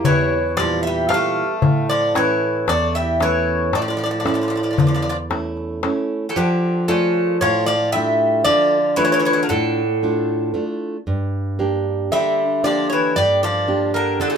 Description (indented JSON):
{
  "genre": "greek folk, Greek bouzouki band",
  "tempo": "115 BPM (eighths)",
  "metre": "9/8",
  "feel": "straight",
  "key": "D harmonic minor",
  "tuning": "A4 = 440 Hz",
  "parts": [
    { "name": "Greek bouzouki", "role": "melody", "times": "0.0-14.3 s", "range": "G4 to F5", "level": "-20 LUFS", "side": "equal", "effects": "none" },
    { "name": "Greek bouzouki", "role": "second line", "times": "0.0-14.4 s", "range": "C#3 to A3", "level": "-24 LUFS", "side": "left 2 dB", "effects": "none" },
    { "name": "nylon-string guitar", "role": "accompaniment", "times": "0.0-14.4 s", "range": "E2 to D5", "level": "-21 LUFS", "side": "right 2 dB", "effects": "none" },
    { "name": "darbuka", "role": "percussion", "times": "0.0-6.1 s", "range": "none", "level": "-20 LUFS", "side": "left 3 dB", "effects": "none" }
  ],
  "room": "moderate studio reverb, RT60 0.5 s",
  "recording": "minimal, uncompressed stereo recording",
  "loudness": "-16 LUFS",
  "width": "side -7 dB against mid",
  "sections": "0.0-6.4 A section; 6.4-14.4 B section",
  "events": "none",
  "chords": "0.0 Edim; 1.6 A; 6.4 Dm; 11.1 Gm"
}